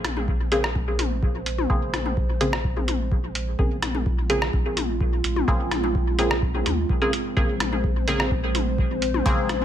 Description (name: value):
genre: dub techno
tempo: 127 BPM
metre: 4/4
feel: straight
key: Bb minor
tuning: A4 = 437 Hz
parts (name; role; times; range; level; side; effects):
- dark analog pad; sustained chords; 0.0-9.6 s; Ab3 to C5; -30 LUFS; right 1 dB; chorus, sidechain pumping
- soft dub sub bass; bass; 0.0-9.6 s; Bb1 to Eb2; -28 LUFS; equal; sidechain pumping
- lo-fi sampler-style drum kit; drums; 0.0-9.6 s; hi-hat, rim click; -29 LUFS; right 1 dB; studio reverb, dub echo
- electronic toms; percussion; 0.0-9.6 s; none; -31 LUFS; left 7 dB; overdrive, sidechain pumping on toms, studio reverb, dub echo
- electronic kick drum; drums; 0.3-9.4 s; none; -26 LUFS; equal; studio reverb
- filtered dub chord stab; stabs; 0.5-9.6 s; Db3 to Ab4; -27 LUFS; equal; chorus, phaser, sidechain pumping, dub echo
room: digital ambience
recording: none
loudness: -21 LUFS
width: side -10 dB against mid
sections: 0.0-9.6 A section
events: none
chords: 0.0 Bbm9